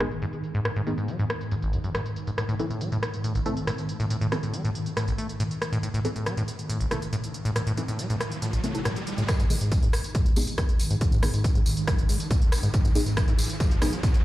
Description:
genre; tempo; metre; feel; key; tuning
driving peak-time techno; 139 BPM; 4/4; straight; unclear; A4 = 441 Hz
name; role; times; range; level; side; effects
acid bass, saw; riff; 0.0-14.1 s; G#1 to A3; -29 LUFS; equal; sidechain pumping
filtered dub chord stab; stabs; 0.0-13.9 s; B3 to A4; -35 LUFS; equal; phaser, ensemble chorus, sidechain pumping, dub echo
swarming drone; drone; 0.0-14.2 s; G#2 to D#3; -34 LUFS; equal; built-in reverb, sidechain pumping
techno drum kit; drums; 0.0-14.2 s; hi-hat, rim click, tambourine; -33 LUFS; equal; high-pass filter on snare, low-pass filter on snare, high-pass filter on hats, low-pass filter on hats, high-pass filter on cymbals, low-pass filter on cymbals, high-pass filter on perc, low-pass filter on perc, high-pass filter on room, low-pass filter on room
riser; sound effects; 6.9-14.2 s; none; -37 LUFS; right 1 dB; none
electronic kick drum; drums; 9.3-14.1 s; none; -23 LUFS; equal; none
room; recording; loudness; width
light reverb; played on a big sound system in a bare room, large studio reverb; -24 LUFS; side -15 dB against mid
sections
0.0-9.3 A section; 9.3-14.2 B section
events
filter sweep on drum 0.0-9.3; riser 6.9-9.3, 9.3-14.2; build-up 9.3-14.2; filter sweep on synth stab 9.3-14.2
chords
0.0 G#m; 2.4 Am; 9.3 G#m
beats
0.22 | 0.65 1.08 1.51 1.95 | 2.38 2.81 3.24 3.67 | 4.11 4.54 4.97 5.40 | 5.83 6.26 6.70 7.13 | 7.56 7.99 8.42 8.85 | 9.29 9.72 10.15 10.58 | 11.01 11.44 11.88 12.31 | 12.74 13.17 13.60 14.03

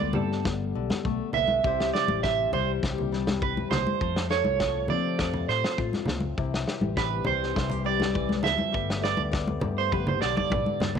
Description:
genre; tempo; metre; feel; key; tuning
highlife guitar band; 101 BPM; 4/4; straight; C major; A4 = 440 Hz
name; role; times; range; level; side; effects
flamenco guitar; accompaniment; 0.0-11.0 s; C3 to D5; -32 LUFS; left 15 dB; none
mellow brass ensemble; sustained chords; 0.0-11.0 s; C3 to B3; -38 LUFS; left 3 dB; none
electric guitar at the edge of break-up; arpeggios; 0.0-10.9 s; A4 to E5; -27 LUFS; right 10 dB; lush chorus, slapback echo
fingered electric bass; bass; 0.0-11.0 s; G1 to F3; -32 LUFS; left 2 dB; none
congas; percussion; 0.0-11.0 s; none; -31 LUFS; left 1 dB; none
warm soul drum kit; drums; 0.3-11.0 s; kick drum, snare drum, toms; -31 LUFS; left 1 dB; none
room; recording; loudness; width
moderate plate reverb, RT60 1.7 s, small room ambience; 1960s-style stereo with parts hard left and right; -24 LUFS; side -7 dB against mid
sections
0.0-11.0 A section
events
clean electric guitar solo 0.0-11.0; drum fill 9.9-11.0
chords
0.0 Gadd9; 1.6 C; 4.0 F; 6.4 C; 8.7 Gadd9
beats
0.46 1.05 | 1.64 2.23 2.82 3.42 | 4.01 4.60 5.19 5.78 | 6.37 6.96 7.56 8.15 | 8.74 9.33 9.92 10.51

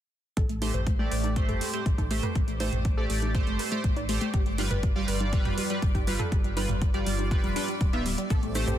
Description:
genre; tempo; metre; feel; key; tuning
progressive house; 121 BPM; 4/4; straight; A minor; A4 = 437 Hz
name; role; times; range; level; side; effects
wide unison pluck; arpeggios; 0.4-8.8 s; G3 to D5; -34 LUFS; left 1 dB; sidechain pumping, digital delay
round analog bass; bass; 0.4-8.8 s; D1 to A1; -31 LUFS; equal; sidechain pumping
electronic hi-hat and shaker; drums; 0.4-8.8 s; none; -37 LUFS; right 2 dB; overdrive
electronic kick drum; drums; 0.4-8.4 s; none; -26 LUFS; equal; overdrive
backwards swelling texture; texture; 1.6-8.8 s; D5 to D6; -43 LUFS; left 2 dB; built-in reverb, sidechain pumping
chorused polysynth; stabs; 0.6-8.6 s; G3 to E5; -32 LUFS; right 2 dB; sidechain pumping, digital delay
electronic congas and toms; percussion; 0.6-8.8 s; none; -35 LUFS; right 2 dB; sidechain pumping on perc, sidechain pumping on toms
lush unison pad; sustained chords; 8.3-8.8 s; A3 to G4; -35 LUFS; equal; chorus, sidechain pumping
room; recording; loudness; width
light reverb, digital ambience; dense, heavily limited modern master; -25 LUFS; side -11 dB against mid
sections
0.4-8.8 A section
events
filter sweep on synth pluck 0.4-8.8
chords
0.4 Am7; 4.3 G7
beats
| 0.37 0.87 1.36 1.86 | 2.35 2.85 3.35 3.84 | 4.34 4.83 5.33 5.83 | 6.32 6.82 7.31 7.81 | 8.30

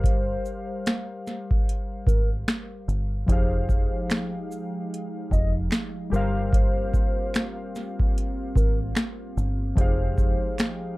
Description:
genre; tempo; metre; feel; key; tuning
lo-fi hip hop; 74 BPM; 4/4; swing 63% on 16ths; F minor; A4 = 444 Hz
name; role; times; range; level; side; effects
warbly nostalgic lead; melody; 0.0-10.8 s; Bb4 to Eb5; -34 LUFS; equal; chorus, low-pass filter, analog delay
warbly lo-fi synth keys; accompaniment; 0.0-11.0 s; F3 to F5; -32 LUFS; left 3 dB; chorus, low-pass filter
deep dub fingered electric bass; bass; 0.0-10.4 s; F1 to Ab1; -27 LUFS; equal; none
booming analog drum machine; drums; 0.0-10.8 s; finger snaps, hi-hat, kick drum, shaker, snare drum; -23 LUFS; equal; overdrive
warbly tape-like pad; sustained chords; 3.3-11.0 s; F3 to G5; -36 LUFS; right 2 dB; chorus, built-in reverb, low-pass filter
finger snap; percussion; 4.1-10.8 s; none; -40 LUFS; right 4 dB; none
room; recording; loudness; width
little or no reverb; dark, warm production; -23 LUFS; side -21 dB against mid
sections
0.0-3.3 A section; 3.3-11.0 A section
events
none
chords
0.0 C7sus4/G; 3.3 Fm9; 6.1 C7sus4/G; 9.8 Fm9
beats
| 0.04 0.85 1.66 2.47 | 3.28 4.09 4.90 5.71 | 6.53 7.34 8.15 8.96 | 9.77 10.58

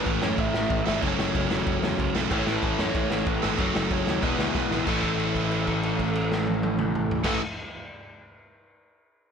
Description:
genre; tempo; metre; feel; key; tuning
punk rock; 187 BPM; 4/4; straight; A major; A4 = 438 Hz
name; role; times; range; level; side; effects
lead guitar through a small cranked amp; melody; 0.0-7.4 s; A4 to E5; -33 LUFS; right 2 dB; overdrive
biting overdriven guitar; riff; 0.0-7.4 s; A2 to A4; -29 LUFS; right 19 dB; none
overdriven semi-hollow guitar; riff; 0.0-7.4 s; E2 to A3; -28 LUFS; left 8 dB; none
growling picked electric bass; bass; 0.1-7.4 s; E1 to F#2; -33 LUFS; equal; overdrive
raw garage drum kit; drums; 0.1-7.3 s; crash cymbal, kick drum, snare drum, toms; -28 LUFS; equal; none
room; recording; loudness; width
light reverb; none; -23 LUFS; side -6 dB against mid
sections
0.0-4.9 A section; 4.9-7.4 B section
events
drum fill 4.6-4.9; held note 4.9-7.2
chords
0.0 A; 1.0 F#m; 2.3 A; 3.6 F#m; 4.2 E; 4.9 A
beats
0.06 0.38 0.70 | 1.02 1.34 1.67 1.99 | 2.31 2.63 2.95 3.27 | 3.59 3.91 4.23 4.55 | 4.87 5.19 5.51 5.84 | 6.16 6.48 6.80 7.12

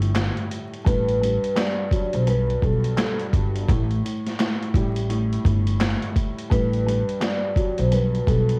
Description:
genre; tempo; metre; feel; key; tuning
hip hop, boom-bap hip-hop; 85 BPM; 4/4; swing 62% on 16ths; unclear; A4 = 438 Hz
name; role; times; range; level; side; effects
warm upright piano; accompaniment; 0.0-8.6 s; G2 to G3; -31 LUFS; equal; high-pass filter, low-pass filter, cassette tape
upright bass; bass; 0.0-8.6 s; G1 to B1; -25 LUFS; equal; none
boom bap sampler-style drum kit; drums; 0.0-8.6 s; handclaps, hi-hat, kick drum, snare drum; -26 LUFS; equal; cassette tape
vibraphone with soft mallets; melody; 0.9-8.6 s; A4 to D5; -28 LUFS; equal; high-pass filter, low-pass filter, cassette tape
room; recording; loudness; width
little or no reverb; home recording on cassette, vinyl crackle; -22 LUFS; mono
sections
0.0-8.6 A section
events
none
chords
0.0 Gsus2; 0.9 Gmaj7/A; 3.7 Gsus2; 6.5 Gmaj7/A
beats
0.16 | 0.86 1.57 2.27 2.98 | 3.69 4.39 5.10 5.80 | 6.51 7.22 7.92

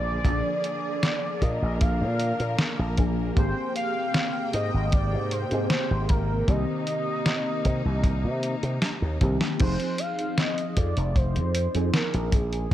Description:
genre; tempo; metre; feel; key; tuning
vaporwave; 77 BPM; 4/4; straight; unclear; A4 = 439 Hz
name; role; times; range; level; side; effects
warm velvety synth lead; melody; 0.0-12.7 s; Ab4 to F5; -31 LUFS; equal; chorus, tape echo
clear symphonic string section; sustained chords; 0.0-9.6 s; C3 to G5; -35 LUFS; equal; none
slap bass with an envelope filter; bass; 0.0-12.7 s; F1 to C3; -26 LUFS; equal; tube saturation
mellow FM electric piano; accompaniment; 0.2-12.7 s; Eb3 to Ab4; -31 LUFS; equal; ensemble chorus
kick drum; drums; 0.2-12.7 s; none; -23 LUFS; equal; none
detuned 8-bit digital drum machine; drums; 0.3-12.7 s; crash cymbal, hi-hat, snare drum; -28 LUFS; equal; none
room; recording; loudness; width
light reverb, studio ambience; cassette tape; -23 LUFS; side -12 dB against mid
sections
0.0-9.6 A section; 9.6-12.7 A section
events
drum fill 8.8-9.6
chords
0.0 Bb7; 3.4 Abmaj9; 6.5 Cm7; 9.6 Fm7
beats
| 0.25 1.03 1.81 2.59 | 3.37 4.14 4.92 5.70 | 6.48 7.26 8.04 8.82 | 9.60 10.38 11.16 11.94 | 12.72

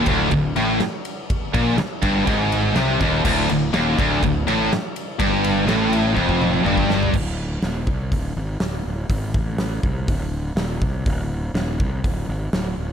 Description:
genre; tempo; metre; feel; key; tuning
heavy metal; 123 BPM; 4/4; straight; D phrygian; A4 = 440 Hz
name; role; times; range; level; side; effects
scooped high-gain guitar; riff; 0.0-7.1 s; D2 to C3; -22 LUFS; right 11 dB; distortion
sludgy distorted guitar; riff; 0.0-7.1 s; D2 to C3; -26 LUFS; equal; overdrive
tight distorted guitar; riff; 0.0-7.1 s; D2 to C3; -22 LUFS; left 10 dB; distortion
fuzz fingered electric bass; bass; 0.0-12.9 s; D1 to C2; -25 LUFS; equal; overdrive
big rock drum kit; drums; 0.1-12.6 s; crash cymbal, hi-hat, kick drum, ride cymbal, snare drum, toms; -24 LUFS; equal; none
room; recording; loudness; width
studio reverb; none; -18 LUFS; side -8 dB against mid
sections
0.0-7.1 A section; 7.1-12.9 B section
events
drum fill 6.2-7.1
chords
0.0 Dm; 7.1 D5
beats
0.31 0.80 | 1.29 1.78 2.27 2.76 | 3.25 3.73 4.22 4.71 | 5.20 5.68 6.17 6.66 | 7.15 7.63 8.12 8.61 | 9.10 9.59 10.08 10.57 | 11.06 11.55 12.04 12.53

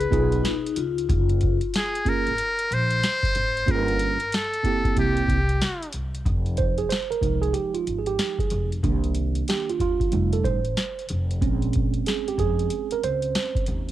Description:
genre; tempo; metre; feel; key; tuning
hip hop, jazz-hop; 93 BPM; 4/4; swing 64% on 16ths; F minor; A4 = 440 Hz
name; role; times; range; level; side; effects
trumpet with metal mute; melody; 0.0-5.9 s; G4 to C5; -25 LUFS; left 1 dB; cassette tape
vibraphone with soft mallets; second line; 0.0-1.6 s; Eb4 to Ab4; -27 LUFS; left 9 dB; cassette tape, tape echo
upright bass; bass; 0.0-13.9 s; F1 to F2; -26 LUFS; equal; none
booming analog drum machine; drums; 0.0-13.9 s; hi-hat, kick drum, snare drum; -26 LUFS; equal; cassette tape
mellow tine electric piano; accompaniment; 0.1-13.9 s; Eb3 to C5; -26 LUFS; right 7 dB; medium stereo tremolo, cassette tape
room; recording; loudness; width
small room ambience; home recording on cassette; -21 LUFS; side -13 dB against mid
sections
0.0-6.3 A section; 6.3-13.9 B section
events
tine electric piano solo 6.3-13.9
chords
0.0 Db7; 1.1 Gbmaj7; 3.7 Gm7b5; 5.0 C7; 6.3 Fm7; 8.8 Cm7; 10.1 F7; 11.4 Bbm7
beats
0.45 | 1.09 1.74 2.38 3.03 | 3.67 4.32 4.96 5.61 | 6.25 6.90 7.54 8.19 | 8.84 9.48 10.13 10.77 | 11.42 12.06 12.71 13.35

